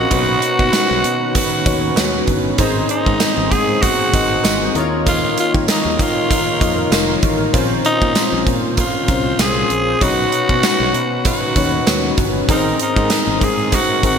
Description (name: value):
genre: 1980s-style pop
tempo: 97 BPM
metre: 4/4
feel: swing 55% on 16ths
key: unclear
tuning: A4 = 441 Hz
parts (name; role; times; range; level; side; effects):
- growling tenor saxophone; melody; 0.0-14.2 s; Eb4 to Ab4; -19 LUFS; equal; ping-pong delay
- FM electric piano; accompaniment; 0.0-14.2 s; Ab2 to Eb5; -22 LUFS; left 6 dB; chorus
- shimmering ambient pad; sustained chords; 0.0-14.2 s; Bb2 to C5; -26 LUFS; equal; chorus, built-in reverb
- analog synth brass; stabs; 0.0-14.2 s; C4 to Db5; -24 LUFS; right 2 dB; chorus, ping-pong delay
- fingered electric bass; bass; 0.0-14.2 s; F1 to Eb3; -24 LUFS; right 1 dB; none
- gated 80s drum kit; drums; 0.1-14.2 s; hi-hat, kick drum, snare drum, tambourine; -18 LUFS; right 1 dB; none
- cowbell; percussion; 0.1-13.9 s; none; -34 LUFS; right 8 dB; none
room: moderate plate reverb, RT60 2.0 s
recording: bright 1980s-style digital production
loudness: -14 LUFS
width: side -7 dB against mid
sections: 0.0-14.2 A section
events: none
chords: 0.1 Badd9; 2.6 Abadd9; 4.8 Ebsus2; 7.5 Bbmadd9; 10.0 Badd9; 12.5 Abadd9